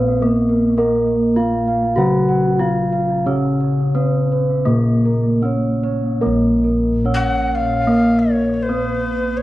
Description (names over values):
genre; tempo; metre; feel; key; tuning
gamelan; 73-105 BPM; 4/4; straight; Bb pelog; A4 = 440 Hz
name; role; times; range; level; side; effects
gamelan-type bronze metallophone; melody; 0.0-9.4 s; Bb3 to Gb4; -20 LUFS; equal; analog delay
gamelan-type bronze metallophone; accompaniment; 0.0-9.4 s; Db3 to Cb4+35c; -21 LUFS; left 1 dB; cassette tape
gamelan-type bronze metallophone; arpeggios; 0.0-9.4 s; Bb4 to Gb5; -23 LUFS; right 2 dB; cassette tape
gamelan-type bossed gongs; bass; 0.0-9.4 s; Bb1 to Bb4; -21 LUFS; left 1 dB; none
breathy mellow tenor recorder; second line; 7.1-9.4 s; Cb5+37c to Gb5; -21 LUFS; left 1 dB; cassette tape
room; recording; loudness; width
moderate spring reverb, RT60 1.4 s, small room reverb; home recording on cassette; -15 LUFS; side -16 dB against mid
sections
0.0-6.2 A section; 6.2-9.4 B section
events
none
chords
none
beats
0.21 | 0.78 1.36 1.97 2.60 | 3.26 3.95 4.67 5.43 | 6.23 7.06 7.88 8.70